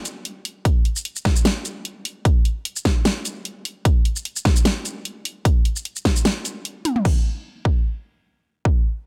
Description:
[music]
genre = dubstep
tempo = 150 BPM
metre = 4/4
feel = swing 54% on 16ths, half-time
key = none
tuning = none
[part]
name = dubstep drum kit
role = drums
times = 0.1-7.1 s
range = crash cymbal, hi-hat, shaker, snare drum, toms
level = -26 LUFS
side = equal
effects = none
[part]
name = electronic kick drum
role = drums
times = 0.7-8.7 s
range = none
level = -20 LUFS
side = equal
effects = none
[sound]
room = digital ambience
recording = none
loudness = -21 LUFS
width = mono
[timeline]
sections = 0.0-7.1 A section; 7.1-9.1 B section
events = drop 0.0-7.1; break 6.3-7.1; drum fill 6.9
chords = none

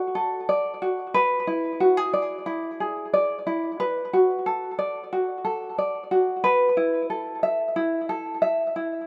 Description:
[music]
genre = pop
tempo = 91 BPM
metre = 4/4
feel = straight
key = unclear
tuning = A4 = 441 Hz
[part]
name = tenor ukulele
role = solo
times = 0.0-9.1 s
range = E4 to E5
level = -25 LUFS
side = equal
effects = digital delay
[sound]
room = light reverb, small room ambience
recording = rough home demo mix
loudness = -25 LUFS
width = mono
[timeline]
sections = 0.0-9.1 A section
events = none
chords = 0.0 Bm7; 1.1 E7; 3.8 D6; 6.4 Asus2

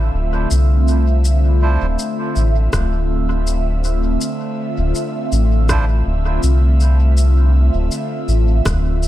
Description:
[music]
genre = ambient dub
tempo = 81 BPM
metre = 4/4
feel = swing 53% on 16ths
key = D minor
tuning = A4 = 440 Hz
[part]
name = airy breathy pad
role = sustained chords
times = 0.0-9.1 s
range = D3 to E5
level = -22 LUFS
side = equal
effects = chorus, phaser
[part]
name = round analog bass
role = bass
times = 0.0-9.1 s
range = D1 to C2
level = -14 LUFS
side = equal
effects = none
[part]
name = electronic shaker and rim click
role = drums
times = 0.5-9.1 s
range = none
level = -28 LUFS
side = left 2 dB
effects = studio ambience, dub echo
[part]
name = melodica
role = stabs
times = 1.6-5.9 s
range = F3 to C5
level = -28 LUFS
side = right 4 dB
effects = low-pass filter, dub echo
[part]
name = electronic kick drum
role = drums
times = 2.7-8.8 s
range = none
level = -20 LUFS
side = equal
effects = studio ambience
[sound]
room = little or no reverb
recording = none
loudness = -14 LUFS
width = side -14 dB against mid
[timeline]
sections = 0.0-9.1 A section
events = none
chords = 0.0 Dm9

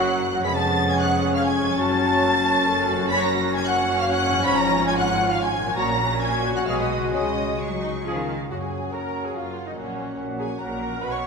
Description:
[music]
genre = classical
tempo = 130-145 BPM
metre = 3/4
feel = straight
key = F# minor, F# major from 3.1 s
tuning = A4 = 440 Hz
[part]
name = warm symphonic violin section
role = melody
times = 0.0-11.3 s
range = F#5 to B6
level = -28 LUFS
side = left 2 dB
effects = none
[part]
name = dark clarinet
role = second line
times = 0.0-11.3 s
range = E#4 to F#5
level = -32 LUFS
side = left 5 dB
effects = none
[part]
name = mellow silver concert flute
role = second line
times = 0.0-11.3 s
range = C#5 to C#6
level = -28 LUFS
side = equal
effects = none
[part]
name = warm symphonic violin section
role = second line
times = 0.0-11.3 s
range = C#5 to C#6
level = -30 LUFS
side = equal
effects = none
[part]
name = clear symphonic viola section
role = accompaniment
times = 0.0-11.3 s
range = F#3 to C#5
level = -30 LUFS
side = right 2 dB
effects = none
[part]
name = mellow bassoon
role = accompaniment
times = 0.0-11.3 s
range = F#3 to C#4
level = -31 LUFS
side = right 4 dB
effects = none
[part]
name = mellow French horn section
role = sustained chords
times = 0.0-11.3 s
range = E#3 to C#4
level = -30 LUFS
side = left 3 dB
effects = none
[part]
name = concert harp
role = arpeggios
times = 0.0-11.3 s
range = E#2 to A#5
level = -31 LUFS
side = left 4 dB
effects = none
[part]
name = dark trumpet section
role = stabs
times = 0.0-11.3 s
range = F#4 to F#5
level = -33 LUFS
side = right 1 dB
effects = none
[part]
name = rich symphonic cello section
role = bass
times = 0.0-11.3 s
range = E#2 to G#3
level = -31 LUFS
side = right 1 dB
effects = none
[part]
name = rich symphonic double bass section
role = bass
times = 0.0-11.3 s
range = E#1 to C#2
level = -32 LUFS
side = right 4 dB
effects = none
[sound]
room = wet scoring stage reverb, RT60 1.8 s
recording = minimal, uncompressed stereo recording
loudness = -20 LUFS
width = side -5 dB against mid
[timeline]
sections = 0.0-8.5 A section; 8.5-11.3 B section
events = none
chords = 0.4 C#7/E#; 1.8 F#m; 3.1 F#5; 4.4 C#/G#; 5.8 F#/A#; 6.7 G#m7/B; 7.1 C#sus4; 8.1 C#; 8.5 F#; 9.8 F#/A#

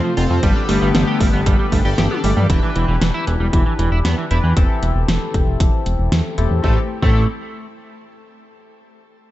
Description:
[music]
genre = synthwave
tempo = 116 BPM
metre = 4/4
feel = straight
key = A minor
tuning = A4 = 440 Hz
[part]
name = warm analog pad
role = sustained chords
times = 0.0-2.5, 6.6-6.9 s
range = C3 to G4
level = -24 LUFS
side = left 2 dB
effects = chorus, sidechain pumping, shimmer reverb
[part]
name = clean electric guitar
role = riff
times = 0.0-7.3 s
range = E3 to G4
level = -25 LUFS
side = right 2 dB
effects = analog chorus, tape echo, shimmer reverb
[part]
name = chorused polysynth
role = stabs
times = 0.0-7.2 s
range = A2 to D5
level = -25 LUFS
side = left 3 dB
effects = cassette tape, tape echo, shimmer reverb
[part]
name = soft round pluck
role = arpeggios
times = 0.2-2.4 s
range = G3 to C4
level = -26 LUFS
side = right 2 dB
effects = none
[part]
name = fat analog bass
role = bass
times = 0.2-7.3 s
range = E1 to G2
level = -18 LUFS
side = equal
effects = tube saturation
[part]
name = pop drum kit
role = drums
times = 0.2-6.5 s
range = hi-hat, snare drum, toms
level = -24 LUFS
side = equal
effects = studio reverb
[part]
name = electronic kick drum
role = drums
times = 0.4-7.1 s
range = none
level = -17 LUFS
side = equal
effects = studio reverb
[sound]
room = light reverb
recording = dark, warm production, nothing above 8.0 kHz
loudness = -14 LUFS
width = side -15 dB against mid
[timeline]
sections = 0.0-2.5 A section; 2.5-6.6 B section; 6.6-8.7 C section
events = drum fill 2.0-2.5; filter sweep on analog synth bass 2.5-6.6; filter sweep on analog polysynth 2.5-6.6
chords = 0.4 Gadd9; 2.5 Em7; 4.6 Am7/E; 6.6 Am7

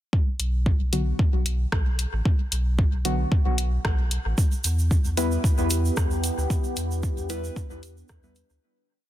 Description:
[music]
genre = dub techno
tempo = 113 BPM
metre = 4/4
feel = swing 53% on 16ths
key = B minor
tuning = A4 = 440 Hz
[part]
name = electronic kick drum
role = drums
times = 0.1-8.2 s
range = none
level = -22 LUFS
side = equal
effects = none
[part]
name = warm sub bass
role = bass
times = 0.4-8.6 s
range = A1 to E2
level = -25 LUFS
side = equal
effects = sidechain pumping
[part]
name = deep house drum kit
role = drums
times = 0.4-8.5 s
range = hi-hat, rim click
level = -31 LUFS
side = left 1 dB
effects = soft clipping on snare, dub echo
[part]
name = deep mellow chord stab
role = stabs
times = 0.9-8.4 s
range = D3 to B4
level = -30 LUFS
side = left 1 dB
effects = chorus, phaser, sidechain pumping, dub echo
[part]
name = deep dark ambient pad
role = sustained chords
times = 5.4-8.6 s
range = B3 to G4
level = -32 LUFS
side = equal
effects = chorus, built-in reverb, sidechain pumping
[part]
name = tube shaker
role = percussion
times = 4.4-8.6 s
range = none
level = -34 LUFS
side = right 6 dB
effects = none
[sound]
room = digital ambience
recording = dense, heavily limited modern master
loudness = -22 LUFS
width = side -13 dB against mid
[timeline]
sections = 0.1-8.6 groove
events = fade-out 5.8-8.6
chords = 0.1 B5; 4.4 Em

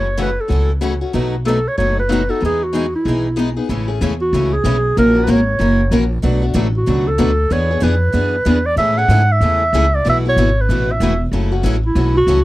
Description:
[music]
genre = acoustic string swing (jazz manouche)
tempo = 189 BPM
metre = 4/4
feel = swing 61% on 8ths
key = E major, A major from 3.7 s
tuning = A4 = 440 Hz
[part]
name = mellow clarinet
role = melody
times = 0.0-12.4 s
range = E4 to F#5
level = -17 LUFS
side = right 1 dB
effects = none
[part]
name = picked steel-string acoustic guitar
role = accompaniment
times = 0.0-12.4 s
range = B2 to A#4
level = -20 LUFS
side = left 4 dB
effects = none
[part]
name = picked steel-string acoustic guitar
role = accompaniment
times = 0.0-12.4 s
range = B2 to B4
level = -24 LUFS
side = right 4 dB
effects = none
[part]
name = upright bass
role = bass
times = 0.0-12.4 s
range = E1 to A2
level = -17 LUFS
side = equal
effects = none
[sound]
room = little or no reverb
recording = dry, close 1970s-style studio recording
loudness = -14 LUFS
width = side -16 dB against mid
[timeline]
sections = 0.0-3.7 A section; 3.7-12.4 B section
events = none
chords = 0.0 F#m7; 1.1 B7; 2.4 Emaj7; 3.7 Amaj7; 5.0 F#7; 6.2 Bm9; 7.5 E7; 8.8 Amaj7; 10.1 B7sus4; 11.3 F#m7

